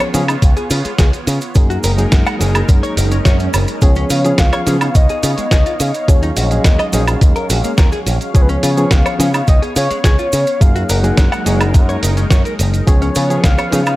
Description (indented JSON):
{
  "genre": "nu-disco, nu disco",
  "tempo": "106 BPM",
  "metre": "4/4",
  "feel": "straight",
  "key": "Db mixolydian",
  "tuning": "A4 = 440 Hz",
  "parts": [
    { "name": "barky reed electric piano", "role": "accompaniment", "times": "0.0-13.8 s", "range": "F3 to F5", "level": "-20 LUFS", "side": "equal", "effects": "overdrive, fast tremolo, sidechain pumping, slapback echo" },
    { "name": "lush unison pad", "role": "sustained chords", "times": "0.0-14.0 s", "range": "Gb3 to F6", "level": "-26 LUFS", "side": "equal", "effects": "chorus, phaser, sidechain pumping" },
    { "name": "direct-recorded clean electric guitar", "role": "riff", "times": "0.0-13.9 s", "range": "Ab3 to Gb5", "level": "-23 LUFS", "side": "left 2 dB", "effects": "wide subtle chorus, slapback echo" },
    { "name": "dusty soul sampler-style drum kit", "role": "drums", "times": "0.0-14.0 s", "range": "hi-hat, snare drum, woodblock", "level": "-21 LUFS", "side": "right 1 dB", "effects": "none" },
    { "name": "cabasa", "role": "percussion", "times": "0.0-14.0 s", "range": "none", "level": "-29 LUFS", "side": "right 4 dB", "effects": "none" },
    { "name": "picked electric bass with an envelope filter", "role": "bass", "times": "0.1-13.9 s", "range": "Gb1 to Db3", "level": "-16 LUFS", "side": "equal", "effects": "none" },
    { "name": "electronic kick drum", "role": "drums", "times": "0.4-13.6 s", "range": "none", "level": "-11 LUFS", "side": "equal", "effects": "none" },
    { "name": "swell", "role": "sound effects", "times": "2.9-3.8 s", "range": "none", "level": "-26 LUFS", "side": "right 5 dB", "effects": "none" },
    { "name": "soft octave-layered synth lead", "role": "melody", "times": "3.8-14.0 s", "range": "Cb5 to Gb5", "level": "-21 LUFS", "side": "left 1 dB", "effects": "chorus, cassette tape, analog delay" }
  ],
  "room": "digital ambience",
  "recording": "none",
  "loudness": "-11 LUFS",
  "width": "side -18 dB against mid",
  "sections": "0.0-14.0 A section",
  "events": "swell 2.9-3.8",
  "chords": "0.0 Db7; 1.6 Gb69; 3.8 Db7; 6.1 Ebm11; 8.3 Db7; 10.6 Gb69; 12.9 Db7"
}